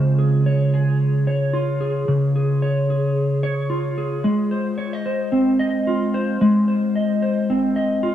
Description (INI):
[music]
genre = indie pop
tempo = 111 BPM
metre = 4/4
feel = swing 55% on 16ths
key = Ab major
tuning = A4 = 442 Hz
[part]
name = mellow electric guitar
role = solo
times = 0.0-8.1 s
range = Db3 to Eb5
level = -18 LUFS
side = equal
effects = lush chorus, vibrato effect, slapback echo
[sound]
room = moderate spring reverb, RT60 2.9 s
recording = dark, warm production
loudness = -18 LUFS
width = side -11 dB against mid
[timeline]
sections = 0.0-8.1 A section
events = none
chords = 0.0 Db; 4.2 Ab6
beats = 0.46 1.00 1.54 | 2.08 2.62 3.17 3.71 | 4.25 4.79 5.33 5.87 | 6.41 6.95 7.49 8.03